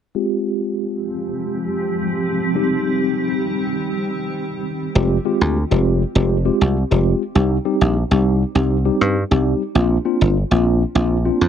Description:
pop; 100 BPM; 4/4; straight; A4 = 440 Hz
mellow tine electric piano; accompaniment; 0.1-11.5 s; G3 to G4; -20 LUFS; equal; medium stereo tremolo, low-pass filter
granular cloud pad; sustained chords; 1.1-4.9 s; Eb3 to G4; -23 LUFS; left 1 dB; built-in reverb, low-pass filter
dry thumbed slap bass; bass; 5.0-11.5 s; F1 to G2; -17 LUFS; equal
digital ambience; -16 LUFS; side -8 dB against mid
0.2-5.0 A section; 5.0-11.5 B section
filter sweep 0.2-5.0
0.2 Fmadd9; 2.6 Cm; 5.0 Fmadd9; 7.4 Cm; 9.8 Bbadd9
| 0.15 0.75 1.35 1.95 | 2.55 3.15 3.75 4.35 | 4.95 5.55 6.15 6.75 | 7.35 7.95 8.55 9.15 | 9.75 10.35 10.95

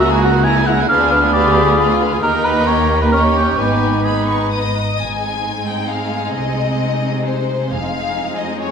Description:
classical, dramatic, fast romantic movement for symphony orchestra; 134 BPM; 3/4; rubato; G# minor, Ab major from 5.0 s; A4 = 440 Hz
warm symphonic violin section; melody; 0.0-8.7 s; C5 to D#6; -24 LUFS; left 5 dB
clear clarinet; second line; 0.0-4.7 s; D#4 to Ab4; -24 LUFS; left 3 dB
concert flute; second line; 0.0-4.8 s; A#5 to C#6; -22 LUFS; right 1 dB
warm oboe; second line; 0.0-4.5 s; G4 to G#5; -18 LUFS; right 2 dB
warm studio violin section; second line; 0.0-8.7 s; C#4 to C#5; -23 LUFS; left 2 dB
warm symphonic viola section; accompaniment; 0.0-8.7 s; Ab3 to G4; -23 LUFS; right 2 dB
warm French horn section; sustained chords; 0.0-4.8 s; A#3 to G#4; -23 LUFS; left 4 dB
dark chamber double bass section; bass; 0.0-8.1 s; F1 to D#2; -23 LUFS; right 3 dB
warm symphonic cello section; bass; 0.0-8.7 s; C#2 to C3; -22 LUFS; right 2 dB
wet scoring stage reverb, RT60 1.7 s; minimal, uncompressed stereo recording; -14 LUFS; side -6 dB against mid
0.0-5.0 A section; 5.0-8.7 B section
0.0 A#m7b5/C#; 0.9 Ddim7; 2.2 D#; 3.1 D#7; 3.6 G#m; 5.0 Ab; 6.4 Ab/C; 7.7 Fm7
0.00 0.45 | 0.89 1.33 1.78 | 2.23 2.67 3.13 | 3.59 4.06 4.52 | 5.00 5.46 5.91 | 6.36 6.80 7.26 | 7.72 8.17 8.61

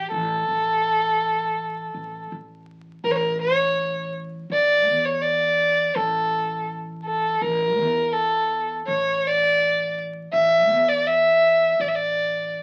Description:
turkish; 82 BPM; 4/4; straight; A makam hicaz; A4 = 440 Hz
warm violin; melody; 0.0-12.5 s; G4 to E5; -22 LUFS; equal
upright bass; bass; 0.0-12.6 s; A1 to E2; -37 LUFS; equal
light reverb; very old 78 rpm record, vinyl crackle; -22 LUFS; mono
0.0-3.0 A section; 3.0-12.6 B section
| 0.12 0.85 1.58 2.31 | 3.04 3.77 4.50 5.22 | 5.95 6.68 7.41 8.14 | 8.87 9.60 10.33 11.06 | 11.79 12.52

